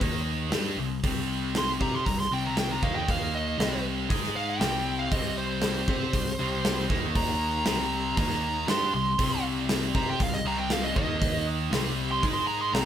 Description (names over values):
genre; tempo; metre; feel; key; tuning
hard rock; 118 BPM; 4/4; straight; C minor; A4 = 440 Hz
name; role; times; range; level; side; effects
scooped high-gain guitar; riff; 0.0-12.9 s; C3 to C5; -32 LUFS; right 7 dB; distortion
sludgy distorted guitar; riff; 0.0-12.9 s; C3 to C5; -32 LUFS; left 5 dB; overdrive
modern bright picked electric bass; bass; 0.0-12.9 s; C2 to C3; -34 LUFS; equal; none
gated 80s drum kit; drums; 0.0-12.9 s; hi-hat, kick drum, snare drum; -30 LUFS; equal; none
high-gain lead guitar; melody; 1.6-12.9 s; C5 to C6; -30 LUFS; right 1 dB; distortion
tonewheel organ; sustained chords; 5.1-12.9 s; Ab3 to F5; -41 LUFS; right 1 dB; none
room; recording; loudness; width
moderate stone room reverb, RT60 1.1 s; band playing live in one room; -25 LUFS; side -10 dB against mid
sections
0.0-12.9 A section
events
lead electric guitar solo 0.0-12.9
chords
0.0 Eb5; 0.5 C5; 2.8 Eb5; 3.6 Cm; 4.1 Ab5; 4.6 C5; 6.9 Eb5; 7.7 C5; 8.2 Eb5; 8.7 C5; 11.0 Eb5; 11.7 C5; 12.2 Ab5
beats
0.02 0.53 | 1.04 1.55 2.06 2.57 | 3.08 3.59 4.10 4.61 | 5.12 5.62 6.13 6.64 | 7.15 7.66 8.17 8.67 | 9.18 9.69 10.20 10.70 | 11.21 11.72 12.23 12.73